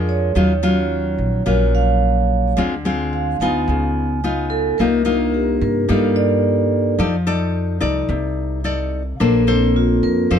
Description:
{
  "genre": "bossa nova",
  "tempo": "109 BPM",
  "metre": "4/4",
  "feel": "straight",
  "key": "unclear",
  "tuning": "A4 = 445 Hz",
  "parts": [
    { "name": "nylon-string guitar", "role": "accompaniment", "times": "0.0-10.4 s", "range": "Bb2 to D5", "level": "-19 LUFS", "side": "left 3 dB", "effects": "none" },
    { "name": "vibraphone with soft mallets", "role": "accompaniment", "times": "0.0-10.4 s", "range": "C4 to Ab5", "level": "-21 LUFS", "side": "right 6 dB", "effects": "none" },
    { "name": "upright bass", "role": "bass", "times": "0.0-10.4 s", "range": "Bb1 to G2", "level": "-21 LUFS", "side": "equal", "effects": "none" }
  ],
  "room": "little or no reverb",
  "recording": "dark, warm production",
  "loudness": "-16 LUFS",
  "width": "side -8 dB against mid",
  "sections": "0.0-10.4 A section",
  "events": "vibraphone solo 0.0-10.4",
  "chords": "0.4 Ebm9; 2.6 Dm7b5; 3.7 Db9; 4.8 Cm7; 7.0 F6; 9.2 Bbmaj9"
}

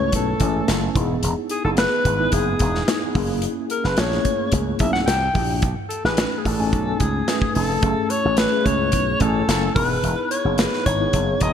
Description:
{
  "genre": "polished 1980s jazz-funk pop",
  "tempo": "109 BPM",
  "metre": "4/4",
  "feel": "straight",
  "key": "F# dorian",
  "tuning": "A4 = 440 Hz",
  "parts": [
    { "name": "mellow alto saxophone", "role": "melody", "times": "0.0-11.5 s", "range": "G#4 to G5", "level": "-23 LUFS", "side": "left 2 dB", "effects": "none" },
    { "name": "mellow tine electric piano", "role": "accompaniment", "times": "0.0-11.5 s", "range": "G#3 to G#5", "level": "-24 LUFS", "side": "left 1 dB", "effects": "medium stereo tremolo, analog chorus" },
    { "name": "slap bass with an envelope filter", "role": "bass", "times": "0.0-11.5 s", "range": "E1 to C#2", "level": "-24 LUFS", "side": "right 1 dB", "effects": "none" },
    { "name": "modern studio drum kit", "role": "drums", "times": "0.1-11.5 s", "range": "hi-hat, kick drum, snare drum", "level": "-24 LUFS", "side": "equal", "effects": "none" }
  ],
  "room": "moderate lush hall reverb, RT60 2.6 s",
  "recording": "bright 1980s-style digital production",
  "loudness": "-18 LUFS",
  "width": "side -8 dB against mid",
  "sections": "0.0-11.5 A section",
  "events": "none",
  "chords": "0.0 F#m7; 1.0 Emaj9; 3.2 F#7; 5.1 C9; 5.6 B13; 7.8 F#m7; 9.8 C#m7/E"
}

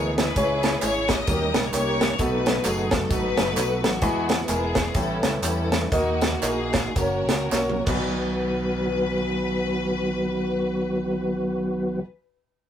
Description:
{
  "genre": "uptempo gospel",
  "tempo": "98-131 BPM",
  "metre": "4/4",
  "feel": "swing 60% on 8ths",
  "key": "B major",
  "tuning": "A4 = 443 Hz",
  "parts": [
    { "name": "clear studio string section", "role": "melody", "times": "0.0-12.0 s", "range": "A#3 to D#5", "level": "-29 LUFS", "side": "left 4 dB", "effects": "none" },
    { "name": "warm baby grand piano", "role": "accompaniment", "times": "0.0-12.0 s", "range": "B1 to D#5", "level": "-27 LUFS", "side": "left 1 dB", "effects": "none" },
    { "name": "mellow tonewheel organ", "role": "sustained chords", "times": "0.0-12.0 s", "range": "D#3 to D#5", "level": "-27 LUFS", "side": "right 1 dB", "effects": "slow rotary speaker, chorus vibrato" },
    { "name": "fingered electric bass", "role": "bass", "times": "0.0-12.0 s", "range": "E1 to E2", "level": "-32 LUFS", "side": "equal", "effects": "none" },
    { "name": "tight funk drum kit", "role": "drums", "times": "0.2-8.0 s", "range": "crash cymbal, hi-hat, kick drum, snare drum, toms", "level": "-25 LUFS", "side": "right 1 dB", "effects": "none" },
    { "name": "tambourine and handclaps", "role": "percussion", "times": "0.2-8.4 s", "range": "none", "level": "-35 LUFS", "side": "right 3 dB", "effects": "none" }
  ],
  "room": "wet booth ambience, RT60 0.2 s",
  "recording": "rough rehearsal-room recording",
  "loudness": "-21 LUFS",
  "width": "side -9 dB against mid",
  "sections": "0.0-8.1 A section; 8.1-12.7 B section",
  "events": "slowing down 4.0-8.1; drum fill 7.5-8.1",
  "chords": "0.4 C#m; 1.3 D#7; 2.2 B7; 4.0 E; 5.0 A9; 5.9 D#m; 7.0 F#; 7.8 B"
}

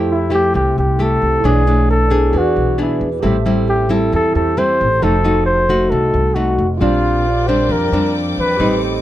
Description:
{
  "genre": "bossa nova",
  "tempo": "134 BPM",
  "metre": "4/4",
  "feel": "straight",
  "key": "F major",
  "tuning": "A4 = 440 Hz",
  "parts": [
    { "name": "barky tine electric piano", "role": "accompaniment", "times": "0.0-9.0 s", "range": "A3 to B5", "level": "-23 LUFS", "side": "right 5 dB", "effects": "analog chorus" },
    { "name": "nylon-string guitar", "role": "accompaniment", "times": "0.0-9.0 s", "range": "A2 to Ab4", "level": "-18 LUFS", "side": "left 1 dB", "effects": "none" },
    { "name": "upright bass", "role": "bass", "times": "0.0-9.0 s", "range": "F1 to F2", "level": "-19 LUFS", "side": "equal", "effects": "none" },
    { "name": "mellow flugelhorn", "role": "melody", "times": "0.1-8.8 s", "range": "E4 to C5", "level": "-17 LUFS", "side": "equal", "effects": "none" },
    { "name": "warm chamber string section", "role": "sustained chords", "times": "6.8-9.0 s", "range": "A4 to D6", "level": "-26 LUFS", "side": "left 3 dB", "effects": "none" }
  ],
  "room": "light reverb",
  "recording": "dark, warm production",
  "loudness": "-13 LUFS",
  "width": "side -13 dB against mid",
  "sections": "0.0-9.0 A section",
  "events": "none",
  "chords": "0.0 Fmaj9; 1.4 Bm11; 2.3 E7; 3.2 Am7; 5.0 F7b9; 6.8 Bb69"
}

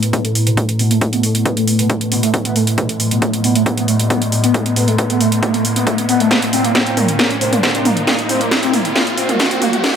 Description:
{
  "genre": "driving peak-time techno",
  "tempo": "136 BPM",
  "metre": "4/4",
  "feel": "straight",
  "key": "A minor",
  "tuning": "A4 = 440 Hz",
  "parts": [
    { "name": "metallic inharmonic drone", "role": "drone", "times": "0.0-10.0 s", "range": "A2", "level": "-19 LUFS", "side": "equal", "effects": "chorus, built-in reverb, phaser, sidechain pumping" },
    { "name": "techno drum kit", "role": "drums", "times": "0.0-9.9 s", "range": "hi-hat, snare drum, toms", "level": "-18 LUFS", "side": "right 1 dB", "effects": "sidechain pumping on hats, sidechain pumping on toms, analog delay" },
    { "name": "riser", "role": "sound effects", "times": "1.6-10.0 s", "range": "none", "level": "-24 LUFS", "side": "equal", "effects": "none" },
    { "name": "overdriven synth lead", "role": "riff", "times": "0.1-9.9 s", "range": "A3 to C4", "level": "-18 LUFS", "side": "equal", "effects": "phaser, lush chorus, cassette tape, sidechain pumping, tape echo" },
    { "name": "electronic kick drum", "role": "drums", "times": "0.1-9.9 s", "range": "none", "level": "-21 LUFS", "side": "equal", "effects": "high-pass filter on kick" }
  ],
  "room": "moderate plate reverb, RT60 1.4 s",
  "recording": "echo-heavy mix, high-pass filter",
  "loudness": "-13 LUFS",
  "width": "side -8 dB against mid",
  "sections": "0.0-10.0 A section",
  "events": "build-up 0.0-10.0; filter sweep on analog synth lead 0.0-10.0; riser 1.6-10.0; drum fill 6.3-10.0",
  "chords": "0.0 Asus2; 6.3 Am"
}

